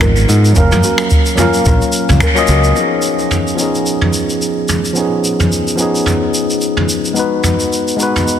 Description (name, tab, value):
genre	sunset chillout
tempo	109 BPM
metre	4/4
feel	swing 57% on 16ths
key	unclear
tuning	A4 = 440 Hz
part	tine electric piano	accompaniment	0.0-8.4 s	E#3 to E#5	-15 LUFS	moving between left 5 dB and right 4 dB	overdrive, auto-pan, low-pass filter, ping-pong delay
part	kalimba	arpeggios	0.0-2.7 s	E#4 to A#4	-22 LUFS	left 3 dB	ping-pong delay
part	fingered electric bass	bass	0.0-2.7 s	F#1 to G#2	-11 LUFS	equal	none
part	electronic kick drum	drums	0.0-2.3 s	none	-14 LUFS	equal	none
part	vintage brush drum kit	drums	0.0-8.4 s	finger snaps, shaker, toms	-17 LUFS	equal	soft clipping on snare
part	bongos	percussion	0.7-1.5 s	none	-28 LUFS	left 8 dB	none
room	moderate lush hall reverb, RT60 2.5 s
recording	dense, heavily limited modern master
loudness	-11 LUFS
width	side -9 dB against mid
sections	0.0-2.8 A section; 2.8-8.4 B section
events	band accent 2.2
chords	0.0 G#m69; 0.6 F#maj7; 2.8 C#9; 7.2 G#m7